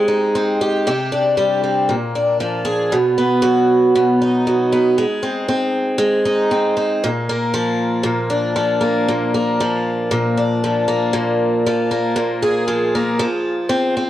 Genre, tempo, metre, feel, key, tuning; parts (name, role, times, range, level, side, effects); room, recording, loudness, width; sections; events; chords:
pop; 117 BPM; 4/4; straight; A4 = 441 Hz
picked twelve-string acoustic guitar; solo; 0.0-14.1 s; Bb2 to Ab4; -15 LUFS; equal
light reverb; worn, warbling old tape, cassette tape, warbly pitch drift; -15 LUFS; side -13 dB against mid
0.0-2.9 A section; 2.9-11.1 B section; 11.1-14.1 C section
0.0 Abmaj7; 0.9 Csus2; 1.9 Bb7; 2.9 B; 5.0 Ab; 7.0 Bb; 11.1 Bb5; 13.2 Fm